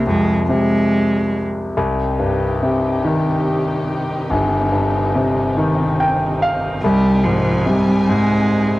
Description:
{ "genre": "pop", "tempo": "48 BPM (dotted quarters)", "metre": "6/8", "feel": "straight", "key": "C minor", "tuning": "A4 = 441 Hz", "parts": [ { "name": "rich cello", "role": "melody", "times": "0.0-1.4, 6.8-8.8 s", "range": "F3 to Ab3", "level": "-17 LUFS", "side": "right 1 dB", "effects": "none" }, { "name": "bright concert grand piano", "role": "accompaniment", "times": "0.0-8.8 s", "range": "G1 to G5", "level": "-17 LUFS", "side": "left 1 dB", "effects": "none" }, { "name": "warm studio string section", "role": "sustained chords", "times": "1.8-8.8 s", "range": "C3 to Ab5", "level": "-25 LUFS", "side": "right 1 dB", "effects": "none" } ], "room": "moderate studio reverb, RT60 0.6 s", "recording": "home recording on cassette", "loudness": "-15 LUFS", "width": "side -18 dB against mid", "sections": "0.0-8.8 A section", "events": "grand piano fill 5.6-6.8", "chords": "0.0 Fm; 1.8 Cm; 6.8 Ab/C" }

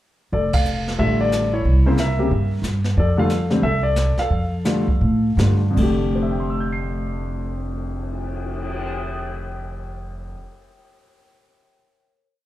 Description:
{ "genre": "jazz piano trio", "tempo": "154-182 BPM", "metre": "4/4", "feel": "swing 63% on 8ths", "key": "F major", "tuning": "A4 = 442 Hz", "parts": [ { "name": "warm grand piano", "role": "melody", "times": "0.3-10.6 s", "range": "F2 to C7", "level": "-22 LUFS", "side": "left 1 dB", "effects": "plate reverb, slapback echo" }, { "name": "upright bass", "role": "bass", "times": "0.3-10.3 s", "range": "F1 to A2", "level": "-21 LUFS", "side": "equal", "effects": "none" }, { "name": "jazz brush drum kit", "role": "drums", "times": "0.3-8.8 s", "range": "brushed snare drum, crash cymbal, cymbal swell, hi-hat, kick drum, ride cymbal, snare drum", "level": "-27 LUFS", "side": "equal", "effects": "none" } ], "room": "light reverb", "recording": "live gig heard through the venue's PA, club reverb", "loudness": "-18 LUFS", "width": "side -14 dB against mid", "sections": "0.3-5.8 A section; 5.8-8.9 final chord", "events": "band accent 0.5; slowing down 3.0-5.8", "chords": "0.3 F69; 1.6 C7b9; 3.0 F69" }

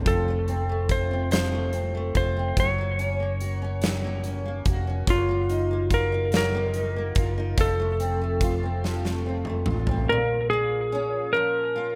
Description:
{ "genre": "six-eight pop ballad", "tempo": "48 BPM (dotted quarters)", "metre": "6/8", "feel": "straight", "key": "Bb minor", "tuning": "A4 = 443 Hz", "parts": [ { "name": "picked steel-string acoustic guitar", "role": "accompaniment", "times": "0.0-12.0 s", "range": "Bb2 to Gb4", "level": "-33 LUFS", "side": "equal", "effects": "double-tracked" }, { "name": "fingered electric bass", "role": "bass", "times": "0.0-10.1 s", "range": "F1 to A1", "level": "-30 LUFS", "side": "equal", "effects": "none" }, { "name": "clean lap steel guitar", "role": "melody", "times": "0.1-12.0 s", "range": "F4 to Db5", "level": "-29 LUFS", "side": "equal", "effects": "digital delay" }, { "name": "huge arena drum kit", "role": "drums", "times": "0.1-10.1 s", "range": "hi-hat, kick drum, snare drum, toms", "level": "-30 LUFS", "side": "equal", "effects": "none" } ], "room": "small room ambience", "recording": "rough home demo mix", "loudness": "-25 LUFS", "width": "mono", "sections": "0.0-10.1 A section; 10.1-12.0 B section", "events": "drum fill 8.8-10.1", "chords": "0.0 F; 2.6 Gb; 5.1 Ebmadd9/Gb; 7.6 F; 10.1 Bbm" }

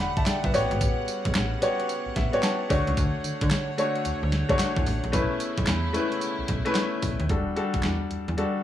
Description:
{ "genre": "R&B, new jack swing", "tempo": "111 BPM", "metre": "4/4", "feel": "swing 64% on 16ths", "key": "E dorian", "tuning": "A4 = 440 Hz", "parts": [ { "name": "clear concert grand piano", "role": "accompaniment", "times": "0.0-8.6 s", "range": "G3 to B5", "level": "-27 LUFS", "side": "left 2 dB", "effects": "none" }, { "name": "rich studio string section", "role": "sustained chords", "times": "0.0-7.3 s", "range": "C#3 to F#5", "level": "-34 LUFS", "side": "right 2 dB", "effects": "none" }, { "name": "slap-like FM bass", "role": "bass", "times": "0.0-8.4 s", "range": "E1 to D3", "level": "-28 LUFS", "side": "equal", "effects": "none" }, { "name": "crisp 8-bit digital drum machine", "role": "drums", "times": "0.2-8.5 s", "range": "handclaps, hi-hat, kick drum, snare drum, tambourine", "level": "-28 LUFS", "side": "equal", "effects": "none" } ], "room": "light reverb", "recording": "small room ambience", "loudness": "-23 LUFS", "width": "side -11 dB against mid", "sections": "0.0-7.3 A section; 7.3-8.6 B section", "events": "grand piano fill 1.9-3.0", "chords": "0.0 Em11; 0.5 A13; 2.7 Dmaj7; 5.1 B9sus4; 7.3 Em11" }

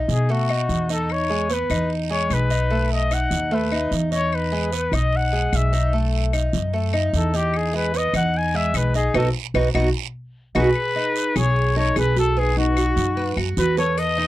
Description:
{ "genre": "latin, Cuban son and guajira", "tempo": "149 BPM", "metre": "4/4", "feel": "straight", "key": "unclear", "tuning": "A4 = 441 Hz", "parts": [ { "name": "Cuban tres", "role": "arpeggios", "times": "0.0-14.3 s", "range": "G#3 to B4", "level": "-25 LUFS", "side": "right 1 dB", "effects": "none" }, { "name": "upright bass", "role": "bass", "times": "0.0-14.3 s", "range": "B1 to B2", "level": "-22 LUFS", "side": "equal", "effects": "none" }, { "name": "breathy trumpet", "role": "melody", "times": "0.1-14.3 s", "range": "F#4 to G#5", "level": "-24 LUFS", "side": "left 3 dB", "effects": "none" }, { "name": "guiro", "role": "percussion", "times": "0.1-14.3 s", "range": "none", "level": "-34 LUFS", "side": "right 19 dB", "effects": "none" }, { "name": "claves", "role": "percussion", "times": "0.5-14.2 s", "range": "none", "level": "-31 LUFS", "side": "left 13 dB", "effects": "none" }, { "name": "nylon-string guitar", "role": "second line", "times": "10.6-14.3 s", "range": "D#4 to B4", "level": "-25 LUFS", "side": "right 1 dB", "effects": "none" } ], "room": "little or no reverb", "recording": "dry, close 1970s-style studio recording, faint mains hum", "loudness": "-19 LUFS", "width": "side -16 dB against mid", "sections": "0.0-10.8 A section; 10.8-14.3 B section", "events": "trumpet solo 0.0-10.8; band accent 9.1-10.8", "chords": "0.0 B7; 1.1 Emaj7; 2.7 B7; 4.3 Emaj7; 5.9 B7; 7.5 Emaj7; 9.1 B; 10.8 B13; 12.4 B" }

